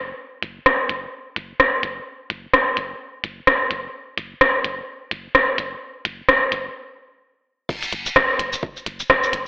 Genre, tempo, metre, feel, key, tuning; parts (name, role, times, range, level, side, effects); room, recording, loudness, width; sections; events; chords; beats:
minimal techno; 128 BPM; 4/4; swing 57% on 16ths; A4 = 440 Hz
punchy sub bass; bass; 0.0-9.5 s; F#1; -39 LUFS; equal; sidechain pumping
minimal click drum kit; drums; 0.4-9.4 s; crash cymbal, hi-hat, rim click, shaker; -17 LUFS; equal; low-pass filter on snare, low-pass filter on hats, low-pass filter on cymbals, low-pass filter on perc, low-pass filter on room
electronic kick drum; drums; 7.7-9.2 s; -29 LUFS; equal
wet digital room reverb, RT60 1.2 s; dry, gritty hardware recording, telephone sound; -18 LUFS; side -24 dB against mid
0.0-7.7 A section; 7.7-9.5 B section
stop 6.8-7.7; drop 7.7-9.5
| 0.19 0.66 1.13 1.60 | 2.07 2.54 3.00 3.47 | 3.94 4.41 4.88 5.35 | 5.82 6.29 6.75 7.22 | 7.69 8.16 8.63 9.10